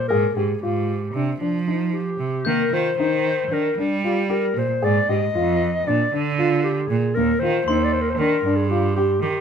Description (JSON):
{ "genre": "contemporary instrumental, chamber music in an uneven meter", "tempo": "230 BPM (eighths)", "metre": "9/8", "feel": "straight", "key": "Eb major", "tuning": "A4 = 440 Hz", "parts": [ { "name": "breathy clarinet", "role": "melody", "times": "0.0-9.4 s", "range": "Eb4 to Eb5", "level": "-23 LUFS", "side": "left 2 dB", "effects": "none" }, { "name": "dark concert grand piano", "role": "arpeggios", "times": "0.1-9.2 s", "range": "Bb3 to Ab4", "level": "-24 LUFS", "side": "left 3 dB", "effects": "none" }, { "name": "clear cello", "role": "bass", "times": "0.1-9.3 s", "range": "Eb2 to G3", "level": "-23 LUFS", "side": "right 5 dB", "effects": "none" }, { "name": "glockenspiel with hard plastic mallets", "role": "texture", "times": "2.4-4.0, 7.7-9.2 s", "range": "C6 to G6", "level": "-32 LUFS", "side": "equal", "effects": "none" } ], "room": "light reverb", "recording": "none", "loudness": "-19 LUFS", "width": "side -7 dB against mid", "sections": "0.0-9.4 A section", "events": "none", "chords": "0.1 Fmadd9/Ab; 1.1 Cmadd9; 2.5 Eb; 4.8 Ab5; 5.9 Bb; 7.2 Eb" }